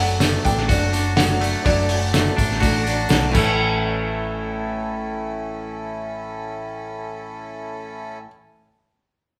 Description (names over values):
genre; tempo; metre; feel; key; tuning
folk rock and heartland rock; 125 BPM; 4/4; straight; A major; A4 = 440 Hz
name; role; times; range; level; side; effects
warm grand piano; melody; 0.0-8.3 s; A4 to G5; -30 LUFS; equal; none
bright reed electric piano; accompaniment; 0.0-8.3 s; D4 to D5; -35 LUFS; equal; none
picked acoustic archtop guitar; accompaniment; 0.0-8.3 s; A2 to A4; -32 LUFS; equal; none
accordion; sustained chords; 0.0-8.2 s; F#3 to A4; -35 LUFS; equal; none
twangy electric guitar; riff; 0.0-8.3 s; A2 to F#4; -29 LUFS; equal; none
hollow-body short-scale picked electric bass; bass; 0.0-8.3 s; F#1 to B1; -27 LUFS; equal; none
tambourine; percussion; 0.1-3.8 s; none; -38 LUFS; equal; none
cloth-damped thuddy drum kit; drums; 0.2-3.5 s; crash cymbal, hi-hat, kick drum, snare drum; -23 LUFS; equal; none
room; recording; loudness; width
moderate large studio reverb, RT60 1.1 s; band playing live in one room; -21 LUFS; mono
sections
0.0-3.6 A section; 3.6-7.4 B section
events
none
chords
0.0 D/F#; 3.3 A